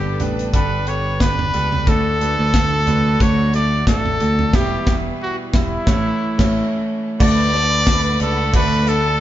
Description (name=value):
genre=piano-driven pop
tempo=90 BPM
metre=4/4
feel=swing 56% on 16ths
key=D major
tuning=A4 = 442 Hz
part: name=bright trumpet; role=melody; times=0.0-9.2 s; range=E4 to D5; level=-20 LUFS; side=equal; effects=none
part: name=bright concert grand piano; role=accompaniment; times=0.0-9.2 s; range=G2 to D5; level=-22 LUFS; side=right 2 dB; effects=none
part: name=clear studio string section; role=sustained chords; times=0.0-9.2 s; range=D3 to F#5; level=-32 LUFS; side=equal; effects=none
part: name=modern bright picked electric bass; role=bass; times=0.0-9.2 s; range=E1 to D2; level=-21 LUFS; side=left 1 dB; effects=none
part: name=modern studio drum kit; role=drums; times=0.2-9.0 s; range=crash cymbal, hi-hat, kick drum, snare drum, toms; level=-19 LUFS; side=equal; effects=none
part: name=warm studio violin section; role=second line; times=7.2-9.2 s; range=A4 to B5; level=-28 LUFS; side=equal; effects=none
room=moderate stone room reverb, RT60 1.3 s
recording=band playing live in one room, nothing above 7.6 kHz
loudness=-15 LUFS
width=side -12 dB against mid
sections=0.0-7.2 A section; 7.2-9.2 B section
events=band accent 4.5-7.2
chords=0.0 Gadd9; 1.9 D; 4.5 Em; 5.9 A; 7.2 D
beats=0.53 1.20 | 1.87 2.54 3.20 3.87 | 4.54 5.20 5.87 6.54 | 7.20 7.87 8.54